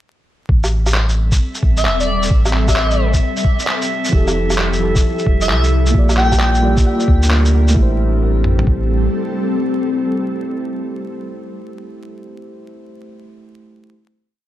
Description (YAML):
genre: future garage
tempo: 132 BPM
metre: 4/4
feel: swing 65% on 16ths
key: A phrygian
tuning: A4 = 437 Hz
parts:
  - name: ethereal airy pad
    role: sustained chords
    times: 0.9-11.6 s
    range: G3 to Bb4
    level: -23 LUFS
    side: left 1 dB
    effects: ensemble chorus, built-in reverb, vintage 12-bit sampler grit, sidechain pumping
  - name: warm sub bass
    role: bass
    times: 0.5-9.1 s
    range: E1 to D2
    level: -16 LUFS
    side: equal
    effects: sidechain pumping
  - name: lo-fi sampler-style drum kit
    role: drums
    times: 0.5-8.8 s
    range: kick drum, toms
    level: -15 LUFS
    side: equal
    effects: small room reverb
  - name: drifting glass-harmonics texture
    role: texture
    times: 1.6-7.8 s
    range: E5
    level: -29 LUFS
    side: right 1 dB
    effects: chorus, built-in reverb
  - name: electronic shaker, woodblock and handclaps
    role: drums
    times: 0.6-7.7 s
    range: none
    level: -21 LUFS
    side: equal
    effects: small room reverb
  - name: airy dreamy lead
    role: melody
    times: 1.8-6.6 s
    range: D5 to G5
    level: -22 LUFS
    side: left 1 dB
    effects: chorus, tape echo
  - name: muted felt-like synth keys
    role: accompaniment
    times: 4.1-13.9 s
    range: F3 to D5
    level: -22 LUFS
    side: right 2 dB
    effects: chorus, sidechain pumping, ping-pong delay
room: moderate plate reverb, RT60 1.1 s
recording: dreamy mix soaked in reverb, vinyl crackle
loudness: -13 LUFS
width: side -13 dB against mid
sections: 0.5-7.8 groove; 7.8-11.4 final chord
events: none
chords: 0.5 Am7; 4.1 Fmaj9; 5.9 Bb6; 7.8 Am7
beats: | 0.49 0.94 1.40 1.85 | 2.31 2.76 3.22 3.67 | 4.13 4.58 5.04 5.49 | 5.95 6.40 6.85 7.31 | 7.76 8.22 8.67 9.13 | 9.58 10.04 10.49 10.95